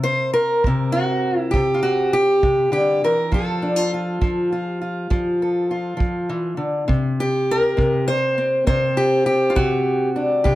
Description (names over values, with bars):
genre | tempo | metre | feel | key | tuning
acoustic country blues, solo or duo | 67 BPM (dotted quarters) | 12/8 | straight | unclear | A4 = 444 Hz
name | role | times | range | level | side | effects
fingerpicked steel-string acoustic guitar | melody | 0.0-10.6 s | C3 to C5 | -18 LUFS | equal | plate reverb
kick drum | drums | 0.6-10.6 s | none | -21 LUFS | right 1 dB | none
room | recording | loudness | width
moderate studio ambience, RT60 0.5 s | none | -17 LUFS | side -16 dB against mid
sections
0.0-10.6 A section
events
none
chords
0.0 C5; 3.3 F; 6.9 C5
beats
0.65 1.54 2.44 | 3.33 4.22 5.11 6.00 | 6.90 7.79 8.68 9.57 | 10.46